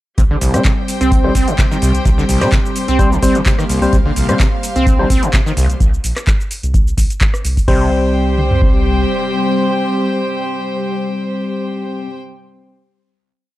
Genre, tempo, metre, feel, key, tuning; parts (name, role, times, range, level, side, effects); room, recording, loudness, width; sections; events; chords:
acid house; 128 BPM; 4/4; swing 54% on 16ths; A4 = 440 Hz
string machine, full ensemble; sustained chords; 0.2-12.1 s; G3 to C5; -23 LUFS; equal; ensemble chorus, sidechain pumping
overdriven acid bass; riff; 0.2-7.9 s; C2 to C4; -18 LUFS; right 1 dB; distortion, tube saturation, lush chorus, sidechain pumping, tape echo
round analog bass; bass; 0.2-9.0 s; Bb1 to C2; -18 LUFS; equal; sidechain pumping
booming analog drum machine; drums; 0.2-8.7 s; kick drum, toms; -14 LUFS; equal
booming analog drum machine; drums; 0.2-7.8 s; crash cymbal, handclaps, hi-hat, rim click, shaker; -23 LUFS; equal
jazz brush drum kit; drums; 0.2-5.7 s; hi-hat, snare drum; -32 LUFS; left 3 dB
bright chamber string section; texture; 0.2-12.2 s; G4 to G5; -24 LUFS; left 1 dB; sidechain pumping
barky tine electric piano; stabs; 0.5-12.1 s; G3 to C5; -19 LUFS; left 2 dB; tape echo
little or no reverb; -12 LUFS; side -16 dB against mid
0.2-7.7 groove; 7.7-11.4 final chord
0.2 C5